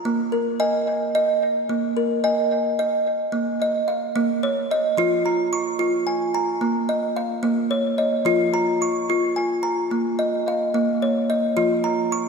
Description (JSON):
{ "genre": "world meditative, meditative tuned percussion", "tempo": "73 BPM (dotted quarters)", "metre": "6/8", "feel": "straight", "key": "Bb minor pentatonic", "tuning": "A4 = 440 Hz", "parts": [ { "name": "kalimba", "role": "solo", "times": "0.0-12.3 s", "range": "F3 to Db6", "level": "-19 LUFS", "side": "equal", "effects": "tape echo" } ], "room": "wet lush hall reverb, RT60 3.0 s", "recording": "dreamy mix soaked in reverb", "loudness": "-19 LUFS", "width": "side -5 dB against mid", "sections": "0.0-3.3 A section; 3.3-12.3 B section", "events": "none", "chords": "0.0 Bb7sus4; 3.3 Bbm; 5.0 Fm; 6.6 Bbm; 8.3 Fm; 9.9 Bbm; 11.6 N.C." }